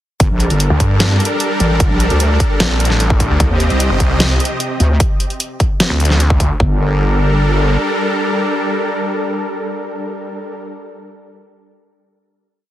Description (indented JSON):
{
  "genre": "heavy wobble dubstep",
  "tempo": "150 BPM",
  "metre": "4/4",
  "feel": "half-time",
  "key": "G minor",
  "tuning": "A4 = 440 Hz",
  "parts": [
    { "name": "supersaw pad", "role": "sustained chords", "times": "0.2-10.6 s", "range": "C3 to Eb5", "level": "-19 LUFS", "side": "equal", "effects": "sidechain pumping" },
    { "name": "wobble bass", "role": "bass", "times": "0.2-7.8 s", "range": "G1 to Eb2", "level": "-14 LUFS", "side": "equal", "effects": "chorus, overdrive" },
    { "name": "dubstep drum kit", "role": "drums", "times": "0.2-6.5 s", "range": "hi-hat, snare drum", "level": "-18 LUFS", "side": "equal", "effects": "overdrive" },
    { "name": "electronic kick drum", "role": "drums", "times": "0.2-6.7 s", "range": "none", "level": "-16 LUFS", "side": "equal", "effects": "overdrive" },
    { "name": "snarling distorted saw bass", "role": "bass", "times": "0.7-6.5 s", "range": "G1 to G2", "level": "-14 LUFS", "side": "equal", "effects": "distortion, overdrive" }
  ],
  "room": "light reverb",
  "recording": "heavily compressed radio sound, multiband compression",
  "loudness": "-12 LUFS",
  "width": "side -13 dB against mid",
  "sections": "0.2-6.6 drop; 6.6-9.8 final chord",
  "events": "drop 0.2-6.6",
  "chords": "0.2 Gmadd9; 3.4 Cm; 6.6 Gmadd9",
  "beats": "| 0.20 0.60 1.00 1.40 | 1.80 2.20 2.60 3.00 | 3.40 3.80 4.20 4.60 | 5.00 5.40 5.80 6.20 | 6.60 7.00 7.40 7.80 | 8.20 8.60 9.00 9.40"
}